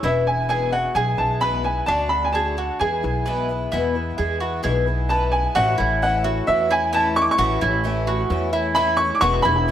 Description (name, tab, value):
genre	indie folk with a building arrangement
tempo	131 BPM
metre	4/4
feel	straight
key	A major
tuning	A4 = 437 Hz
part	picked twelve-string acoustic guitar	accompaniment	0.0-9.7 s	E2 to F#4	-26 LUFS	left 6 dB	none
part	mandolin	arpeggios	0.0-9.7 s	D4 to B4	-26 LUFS	right 6 dB	slapback echo
part	upright bass	bass	0.0-9.7 s	E1 to E2	-25 LUFS	equal	none
part	clear upright piano	melody	0.1-9.7 s	E5 to D6	-21 LUFS	equal	slapback echo
part	mellow tonewheel organ	sustained chords	5.6-9.7 s	E3 to C#5	-32 LUFS	right 1 dB	slow rotary speaker
room	little or no reverb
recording	none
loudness	-18 LUFS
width	side -10 dB against mid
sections	0.0-3.7 A section; 3.7-5.6 B section; 5.6-9.7 C section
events	none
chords	0.0 E; 1.9 D; 2.8 E; 5.6 A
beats	| 0.04 0.50 0.96 1.42 | 1.88 2.34 2.80 3.27 | 3.73 4.18 4.64 5.10 | 5.56 6.02 6.48 6.94 | 7.39 7.85 8.31 8.77 | 9.22 9.68